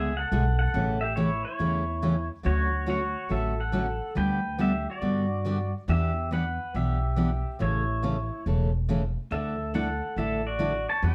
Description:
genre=country, western swing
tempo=140 BPM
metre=4/4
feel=swing 67% on 8ths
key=D major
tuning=A4 = 440 Hz
part: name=pedal steel guitar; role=melody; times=0.0-11.1 s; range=E4 to A5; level=-33 LUFS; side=equal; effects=none
part: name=picked steel-string acoustic guitar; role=accompaniment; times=0.0-11.1 s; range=C#3 to A4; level=-31 LUFS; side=equal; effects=none
part: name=upright bass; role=bass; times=0.0-11.1 s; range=E1 to G2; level=-31 LUFS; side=equal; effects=none
room=moderate studio reverb, RT60 0.7 s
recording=none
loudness=-27 LUFS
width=mono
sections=0.0-2.4 A section; 2.4-11.1 B section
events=none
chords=0.0 E7; 0.7 A7; 2.4 Dmaj7; 4.2 G/D; 5.9 Em7; 7.6 A; 9.3 Dsus2

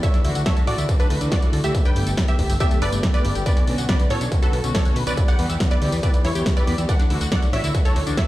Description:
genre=uplifting trance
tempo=140 BPM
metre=4/4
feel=straight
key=unclear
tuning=A4 = 439 Hz
part: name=wide unison pluck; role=melody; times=0.0-8.3 s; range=D4 to G5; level=-28 LUFS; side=right 1 dB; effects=sidechain pumping, tape echo
part: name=plucky unison lead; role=second line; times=0.0-8.3 s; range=A4 to G5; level=-33 LUFS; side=right 1 dB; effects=analog chorus, sidechain pumping, tape echo
part: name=dark symphonic string section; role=sustained chords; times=0.0-8.2 s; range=D3 to G4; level=-29 LUFS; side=equal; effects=sidechain pumping
part: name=tight sequenced synth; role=arpeggios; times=0.0-8.2 s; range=A3 to E5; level=-31 LUFS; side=left 4 dB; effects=chorus, phaser, sidechain pumping, tape echo
part: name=electronic kick drum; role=drums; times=0.0-8.3 s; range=none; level=-20 LUFS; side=equal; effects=distortion
part: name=punchy analog drum machine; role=drums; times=0.0-8.3 s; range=hi-hat, snare drum, tambourine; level=-28 LUFS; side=equal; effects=none
part: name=fat analog bass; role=bass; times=0.2-8.1 s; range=D1 to E2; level=-24 LUFS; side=equal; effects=sidechain pumping
room=digital ambience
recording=played on a big sound system in a bare room, stone room reverb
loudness=-18 LUFS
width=side -16 dB against mid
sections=0.0-8.3 A section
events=none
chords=0.0 Dadd9; 1.7 Gadd9; 3.5 Bmadd9; 5.2 Em; 6.9 Dadd9

